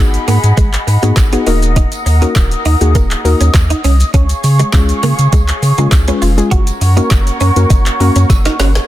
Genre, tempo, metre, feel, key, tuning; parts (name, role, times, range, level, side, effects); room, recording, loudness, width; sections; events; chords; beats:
dance-pop; 101 BPM; 4/4; straight; F# major; A4 = 439 Hz
soft round pluck; accompaniment; 0.0-8.9 s; G#3 to B4; -18 LUFS; left 3 dB; chorus, sidechain pumping
large flute ensemble; sustained chords; 0.0-8.9 s; G#4 to D#6; -20 LUFS; right 1 dB; sidechain pumping
warm sub bass; bass; 0.0-8.8 s; D#1 to C#3; -12 LUFS; equal; sidechain pumping
smooth R&B drum kit; drums; 0.1-8.9 s; handclaps, hi-hat, kick drum, shaker, snare drum; -14 LUFS; equal
direct-recorded clean electric guitar; riff; 0.3-8.7 s; G#3 to F#4; -21 LUFS; right 5 dB; ensemble chorus
tambourine; percussion; 0.3-8.9 s; -33 LUFS; right 12 dB
little or no reverb; dense, heavily limited modern master; -9 LUFS; side -14 dB against mid
0.0-8.9 A section
drum fill 8.3-8.9
0.0 G#m7; 1.5 D#m; 4.1 C#; 6.5 F#
0.58 1.17 | 1.76 2.36 2.95 3.55 | 4.14 4.74 5.33 5.92 | 6.52 7.11 7.71 8.30